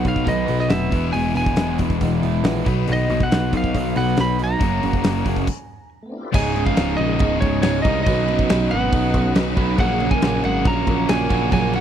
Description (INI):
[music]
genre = classic rock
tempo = 139 BPM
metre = 4/4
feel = straight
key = unclear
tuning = A4 = 441 Hz
[part]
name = lightly driven lead guitar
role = melody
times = 0.0-11.8 s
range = Db5 to Cb6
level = -25 LUFS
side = equal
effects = none
[part]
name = picked steel-string acoustic guitar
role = accompaniment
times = 0.0-11.8 s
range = Bb2 to Cb5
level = -28 LUFS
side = right 6 dB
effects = none
[part]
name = crunchy overdriven guitar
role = riff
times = 0.0-11.8 s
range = Db2 to Cb5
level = -24 LUFS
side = left 13 dB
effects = none
[part]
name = crunchy overdriven guitar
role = riff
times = 0.0-11.8 s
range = Db2 to Cb5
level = -25 LUFS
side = right 11 dB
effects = none
[part]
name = picked electric bass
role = bass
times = 0.0-11.8 s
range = Db1 to C2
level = -24 LUFS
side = equal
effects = none
[part]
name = big rock drum kit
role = drums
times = 0.0-11.8 s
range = crash cymbal, hi-hat, kick drum, snare drum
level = -22 LUFS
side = equal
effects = none
[part]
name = tonewheel organ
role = sustained chords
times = 2.9-11.8 s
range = A3 to Gb5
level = -35 LUFS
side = equal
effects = none
[part]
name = octave-fuzz lead guitar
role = second line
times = 6.4-11.8 s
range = Db3 to Db4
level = -29 LUFS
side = right 3 dB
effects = distortion
[sound]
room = studio reverb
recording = dry, close 1970s-style studio recording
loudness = -17 LUFS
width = side -9 dB against mid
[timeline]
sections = 0.0-6.3 A section; 6.3-11.8 B section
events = stop 5.5-6.3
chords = 0.0 Cb; 0.9 E; 2.7 Cb; 4.6 Gbadd9; 6.3 Dbsus2; 8.1 Cbadd9; 9.8 Gbadd9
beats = 0.28 0.71 | 1.15 1.58 2.01 2.45 | 2.88 3.31 3.75 4.18 | 4.61 5.04 5.47 5.91 | 6.34 6.77 7.20 7.63 | 8.06 8.50 8.93 9.36 | 9.79 10.22 10.65 11.09 | 11.52